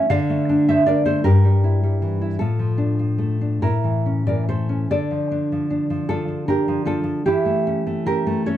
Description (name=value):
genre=romantic piece for solo classical guitar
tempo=47-54 BPM (dotted quarters)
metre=6/8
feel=rubato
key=D minor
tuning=A4 = 442 Hz
part: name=nylon-string guitar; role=solo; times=0.0-8.6 s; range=G2 to F5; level=-18 LUFS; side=equal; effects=none
room=wet small room reverb, RT60 0.5 s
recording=none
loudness=-18 LUFS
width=side -12 dB against mid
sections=0.0-8.6 A section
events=none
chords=0.1 Dm; 1.3 Edim/G; 2.4 Dm/A; 3.6 A; 4.9 Dm; 7.3 A7/E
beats=| 0.12 1.25 | 2.40 3.63 | 4.90 6.07 | 7.25 8.46